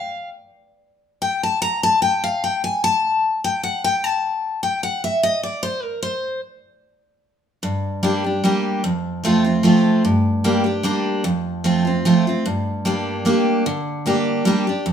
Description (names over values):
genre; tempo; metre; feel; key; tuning
bluegrass; 150 BPM; 3/4; straight; G minor; A4 = 440 Hz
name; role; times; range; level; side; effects
picked steel-string acoustic guitar; solo; 0.0-14.9 s; F2 to Bb5; -17 LUFS; equal; none
room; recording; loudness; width
wet large studio reverb, RT60 1.0 s; minimal, uncompressed stereo recording; -17 LUFS; side -8 dB against mid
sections
0.0-7.6 A section; 7.6-14.9 B section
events
steel-string acoustic guitar solo 0.0-7.6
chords
0.0 N.C.; 7.6 Gm; 8.8 F; 10.0 Gm; 11.2 F; 12.4 Gm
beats
0.01 | 0.41 0.82 1.22 | 1.62 2.02 2.42 | 2.82 3.22 3.62 | 4.02 4.42 4.82 | 5.22 5.62 6.02 | 6.42 6.82 7.22 | 7.63 8.03 8.43 | 8.83 9.23 9.63 | 10.04 10.44 10.84 | 11.24 11.64 12.04 | 12.45 12.85 13.25 | 13.65 14.05 14.45 | 14.85